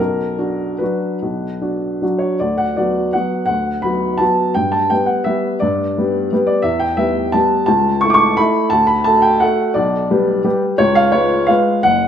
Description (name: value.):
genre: classical, piano waltz.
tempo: 139-182 BPM.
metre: 3/4.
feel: rubato.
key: B minor.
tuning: A4 = 440 Hz.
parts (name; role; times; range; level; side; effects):
warm upright piano; solo; 0.0-12.1 s; F#1 to D6; -14 LUFS; equal; none.
room: moderate recital hall reverb, RT60 1.4 s.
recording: none.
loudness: -14 LUFS.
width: side -8 dB against mid.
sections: 0.0-2.4 A section; 2.4-12.1 B section.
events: none.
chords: 0.0 Bm; 2.4 Bm/D; 4.6 G; 6.7 Em; 7.7 A/C#; 8.7 D; 9.8 G/B; 10.8 C#7.